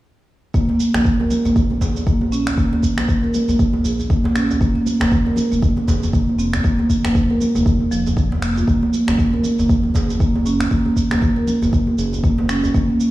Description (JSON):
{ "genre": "afro house", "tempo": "118 BPM", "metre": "4/4", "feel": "swing 58% on 16ths", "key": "unclear", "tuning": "A4 = 439 Hz", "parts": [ { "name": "marimba with soft mallets", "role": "arpeggios", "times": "0.5-12.9 s", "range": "F3 to Bb4", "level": "-19 LUFS", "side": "right 1 dB", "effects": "sidechain pumping, digital delay" }, { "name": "round analog bass", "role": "bass", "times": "0.5-12.9 s", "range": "F1 to Bb1", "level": "-24 LUFS", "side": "equal", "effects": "sidechain pumping" }, { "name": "electronic kick drum", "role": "drums", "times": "0.5-12.9 s", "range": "none", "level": "-18 LUFS", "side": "equal", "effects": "none" }, { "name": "electronic shaker and finger snaps", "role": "drums", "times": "0.5-13.1 s", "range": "none", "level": "-29 LUFS", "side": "right 1 dB", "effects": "none" }, { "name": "congas", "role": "percussion", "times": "0.5-13.1 s", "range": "none", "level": "-26 LUFS", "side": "equal", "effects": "none" }, { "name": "djembe", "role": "percussion", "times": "0.7-13.0 s", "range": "none", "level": "-27 LUFS", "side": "right 3 dB", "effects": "none" } ], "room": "light reverb, small room ambience", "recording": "played on a big sound system in a bare room, stone room reverb", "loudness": "-15 LUFS", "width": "side -16 dB against mid", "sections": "0.5-13.1 A section", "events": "none", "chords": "0.5 N.C.; 8.7 Gb", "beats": "| 0.54 1.05 1.56 2.07 | 2.58 3.09 3.60 4.10 | 4.61 5.12 5.63 6.14 | 6.64 7.15 7.66 8.17 | 8.68 9.19 9.70 10.21 | 10.71 11.22 11.73 12.24 | 12.75" }